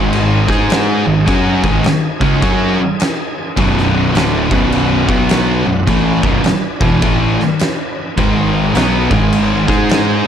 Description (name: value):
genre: stoner and doom metal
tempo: 104 BPM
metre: 4/4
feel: swing 63% on 8ths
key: unclear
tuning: A4 = 440 Hz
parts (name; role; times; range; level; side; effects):
- bright tonewheel organ; sustained chords; 0.0-10.3 s; D4 to G#5; -27 LUFS; equal; none
- heavy high-gain guitar; riff; 0.0-10.3 s; B1 to G#4; -18 LUFS; equal; distortion
- thick fuzz guitar; riff; 0.0-10.2 s; B1 to G#4; -18 LUFS; left 8 dB; distortion
- thick fuzz guitar; riff; 0.0-10.2 s; B1 to G#4; -18 LUFS; right 8 dB; distortion
- fuzz fingered electric bass; bass; 0.0-10.2 s; B0 to G#2; -19 LUFS; equal; overdrive
- oversized low-tuned drum kit; drums; 0.1-10.1 s; crash cymbal, kick drum, snare drum; -18 LUFS; equal; none
room: light reverb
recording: dark, warm production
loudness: -11 LUFS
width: side -8 dB against mid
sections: 0.0-10.3 A section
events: none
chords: 0.0 G#5; 3.6 Bm; 8.2 G#5